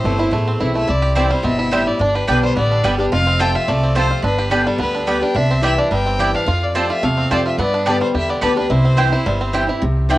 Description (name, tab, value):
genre	bluegrass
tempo	215 BPM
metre	4/4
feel	straight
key	C major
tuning	A4 = 440 Hz
part	bluegrass banjo	melody	0.0-9.8 s	G3 to G4	-22 LUFS	right 2 dB	cassette tape, plate reverb
part	clear fiddle	melody	0.0-9.5 s	A4 to G5	-22 LUFS	left 2 dB	cassette tape
part	picked acoustic archtop guitar	accompaniment	0.0-10.2 s	E2 to G4	-21 LUFS	left 1 dB	cassette tape, plate reverb
part	upright bass	bass	0.0-10.2 s	F1 to G2	-20 LUFS	equal	none
part	mandolin	stabs	1.2-10.2 s	B3 to A5	-21 LUFS	right 2 dB	cassette tape, plate reverb
room	moderate booth ambience, RT60 0.3 s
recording	home recording on cassette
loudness	-15 LUFS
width	side -16 dB against mid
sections	0.0-9.8 A section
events	none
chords	0.0 Am; 2.0 G; 3.1 F; 4.2 G; 5.4 Cadd9; 6.5 F; 7.6 Gadd9; 8.7 C